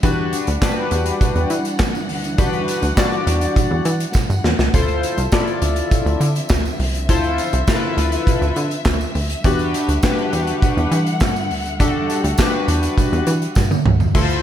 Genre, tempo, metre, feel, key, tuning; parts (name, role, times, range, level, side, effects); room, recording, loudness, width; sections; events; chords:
early-eighties boogie funk; 102 BPM; 4/4; straight; A4 = 440 Hz
chorused polysynth; accompaniment; 0.0-14.4 s; D4 to D5; -21 LUFS; left 2 dB; slapback echo
dark studio string section; sustained chords; 0.0-14.1 s; D3 to F#5; -27 LUFS; left 1 dB
plucky analog bass; bass; 0.0-14.4 s; C2 to E3; -20 LUFS; right 1 dB
modern studio drum kit; drums; 0.0-14.4 s; crash cymbal, handclaps, hi-hat, kick drum, snare drum, toms; -19 LUFS; right 1 dB
tambourine; percussion; 0.0-14.3 s; -36 LUFS; right 5 dB
moderate recital hall reverb, RT60 1.7 s, studio reverb; big arena sound; -16 LUFS; side -10 dB against mid
0.0-14.2 A section
drum fill 4.2-4.7, 13.6-14.2
0.0 Em9; 4.7 Dm9; 9.4 Em9